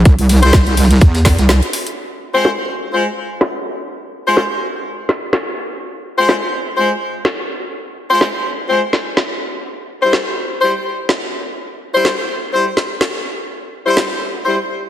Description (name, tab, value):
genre	bass house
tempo	125 BPM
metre	4/4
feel	swing 55% on 16ths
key	F harmonic minor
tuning	A4 = 440 Hz
part	wobble bass	bass	0.0-1.6 s	C2 to E2	-11 LUFS	equal	chorus, sidechain pumping
part	crunchy breakbeat drum kit	drums	0.1-1.6 s	hi-hat, snare drum	-26 LUFS	right 1 dB	high-pass filter on hats, small room ambience, high-pass filter on snare, high-pass filter on room
part	electronic kick drum	drums	0.1-1.4 s	none	-8 LUFS	equal	small room ambience
part	garage drum kit	drums	0.1-14.1 s	hi-hat, snare drum	-19 LUFS	equal	low-pass filter on hats, small room ambience, low-pass filter on snare
part	clear horn section	stabs	0.4-14.6 s	G3 to C5	-16 LUFS	left 2 dB	sidechain pumping, digital delay
room	moderate lush hall reverb, RT60 2.2 s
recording	heavily compressed radio sound, multiband compression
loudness	-14 LUFS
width	side -11 dB against mid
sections	0.0-2.0 A section; 2.0-14.9 B section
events	break 1.5-2.0; filter sweep on drum 2.0-14.9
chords	0.0 C; 2.0 Fm; 9.7 C